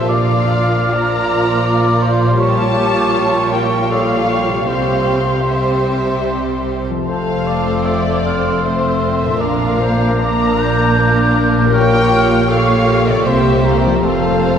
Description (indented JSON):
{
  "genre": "classical",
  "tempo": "77 BPM",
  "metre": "3/4",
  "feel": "uneven beats, rubato",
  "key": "F major",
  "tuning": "A4 = 440 Hz",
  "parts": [
    { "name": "rich studio violin section", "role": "melody", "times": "0.0-14.6 s", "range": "C5 to Bb5", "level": "-22 LUFS", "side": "left 3 dB", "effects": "none" },
    { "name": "clear clarinet", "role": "second line", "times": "0.0-14.6 s", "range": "F4 to C5", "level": "-22 LUFS", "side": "left 1 dB", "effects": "none" },
    { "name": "mellow silver concert flute", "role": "second line", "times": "0.0-14.6 s", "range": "A5 to G6", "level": "-22 LUFS", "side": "left 1 dB", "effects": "none" },
    { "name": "rich studio violin section", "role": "second line", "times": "0.0-14.6 s", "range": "F4 to D5", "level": "-22 LUFS", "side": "left 1 dB", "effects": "none" },
    { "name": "warm cor anglais", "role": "second line", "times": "0.0-14.6 s", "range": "C5 to F5", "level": "-23 LUFS", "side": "right 2 dB", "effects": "none" },
    { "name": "rich studio viola section", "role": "accompaniment", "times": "0.0-14.6 s", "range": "F3 to F4", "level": "-20 LUFS", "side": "right 2 dB", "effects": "none" },
    { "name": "concert harp", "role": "arpeggios", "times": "0.0-14.6 s", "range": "F2 to Db5", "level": "-23 LUFS", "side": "left 5 dB", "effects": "none" },
    { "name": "clear studio cello section", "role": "bass", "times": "0.0-14.6 s", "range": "F2 to C3", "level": "-22 LUFS", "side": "right 2 dB", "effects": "none" },
    { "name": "rich studio double bass section", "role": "bass", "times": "0.0-14.6 s", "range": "F1 to C2", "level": "-21 LUFS", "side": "right 2 dB", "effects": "none" }
  ],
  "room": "wet cathedral reverb, RT60 4.5 s",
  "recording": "recorded in a church or concert hall",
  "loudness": "-12 LUFS",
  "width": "side -8 dB against mid",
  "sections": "0.0-14.6 A section",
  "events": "none",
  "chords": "0.1 Bb; 2.4 Gm7b5/Bb; 4.7 C; 7.1 F; 9.4 Bb; 11.7 Gm7b5/Bb; 13.3 C7; 14.0 F"
}